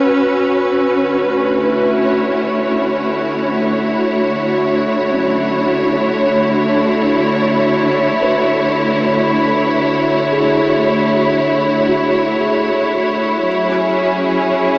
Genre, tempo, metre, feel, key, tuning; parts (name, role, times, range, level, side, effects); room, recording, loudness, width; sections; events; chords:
ambient; 57 BPM; 3/4; straight; D lydian; A4 = 439 Hz
dark studio string section; sustained chords; 0.0-14.8 s; D3 to C#5; -12 LUFS; equal
felt-muted upright piano; arpeggios; 0.0-14.8 s; F#3 to F#5; -24 LUFS; equal; diffuse ambient delay
drifting glass-harmonics texture; texture; 0.0-0.9 s; E6; -36 LUFS; equal
wet huge ambient reverb, RT60 7.4 s; in a vast, echoing space, small speaker sound; -12 LUFS; side -24 dB against mid
0.9-14.8 A section
fade-in on felt piano 0.9-14.8
0.0 F#sus4; 0.9 Dmaj9; 13.5 F#7sus2